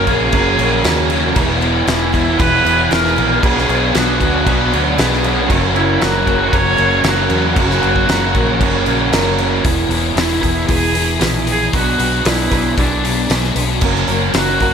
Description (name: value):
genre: rock, shoegaze and dream pop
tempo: 116 BPM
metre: 4/4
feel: straight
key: F# mixolydian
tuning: A4 = 440 Hz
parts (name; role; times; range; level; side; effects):
- clear viola; melody; 0.0-14.7 s; D4 to C#5; -20 LUFS; equal; tape echo
- picked twelve-string acoustic guitar; arpeggios; 0.0-14.7 s; E3 to G#4; -26 LUFS; left 7 dB; analog chorus, tape echo
- electric guitar through a small old amp; riff; 0.0-14.7 s; B2 to B4; -21 LUFS; right 9 dB; reverse reverb
- raw garage guitar; riff; 0.0-9.6 s; E2 to B3; -22 LUFS; equal; overdrive
- thick fuzz guitar; riff; 0.0-14.7 s; E2 to B3; -21 LUFS; left 9 dB; distortion, ensemble chorus
- vintage muted fingered electric bass; bass; 0.0-14.7 s; E1 to E2; -20 LUFS; equal; none
- loose indie drum kit; drums; 0.1-14.7 s; crash cymbal, hi-hat, kick drum, snare drum; -18 LUFS; equal; none
room: light reverb, small room reverb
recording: none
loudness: -12 LUFS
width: side -7 dB against mid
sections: 0.0-9.7 A section; 9.7-14.7 B section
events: none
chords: 0.0 F#; 1.4 E; 3.4 Bm6; 5.5 F#; 9.7 E; 11.7 Bm6; 13.8 F#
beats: 0.33 0.85 | 1.36 1.88 2.40 2.91 | 3.43 3.95 4.46 4.98 | 5.50 6.02 6.54 7.06 | 7.58 8.09 8.61 9.13 | 9.65 10.18 10.70 11.22 | 11.74 12.26 12.78 13.30 | 13.82 14.35